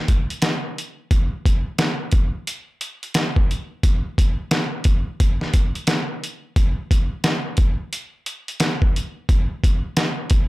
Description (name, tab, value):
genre	hip hop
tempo	88 BPM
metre	4/4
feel	swing 63% on 16ths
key	none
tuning	none
part	trip hop sampler-style drum kit	drums	0.1-10.5 s	hi-hat, kick drum, snare drum	-18 LUFS	equal	none
room	light reverb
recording	none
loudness	-19 LUFS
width	side -19 dB against mid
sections	0.0-10.5 A section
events	none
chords	none